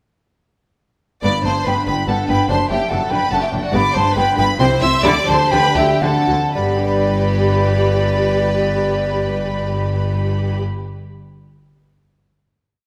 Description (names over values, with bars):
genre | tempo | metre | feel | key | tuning
classical, baroque-style concerto movement with solo episodes | 109-145 BPM | 3/4 | straight | G major | A4 = 440 Hz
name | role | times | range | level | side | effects
hollow wooden flute | melody | 1.2-10.6 s | D5 to C6 | -22 LUFS | equal | none
rich studio violin section | melody | 1.2-10.6 s | F#5 to E6 | -26 LUFS | equal | none
rich symphonic violin section | second line | 1.2-10.6 s | F#4 to E5 | -26 LUFS | equal | none
lute | accompaniment | 1.2-11.2 s | F#2 to D5 | -27 LUFS | equal | none
warm studio viola section | accompaniment | 1.2-10.6 s | B3 to G4 | -27 LUFS | equal | none
warm chamber cello section | bass | 1.2-10.6 s | F#2 to D3 | -24 LUFS | equal | none
warm chamber double bass section | bass | 1.2-10.6 s | F#1 to D2 | -26 LUFS | equal | none
room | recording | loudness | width
wet recital hall reverb, RT60 1.7 s | none | -17 LUFS | mono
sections
1.2-6.6 ritornello; 6.6-9.8 final chord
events
slowing down 3.1-6.6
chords
1.2 G; 2.5 D/F#; 3.7 G; 4.6 C; 5.0 G/D; 6.0 D7; 6.6 G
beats
| 1.24 1.66 2.07 | 2.49 2.90 3.32 | 3.73 4.16 4.59 | 5.04 5.51 6.01 | 6.55 7.10 7.64 | 8.19 8.74 9.28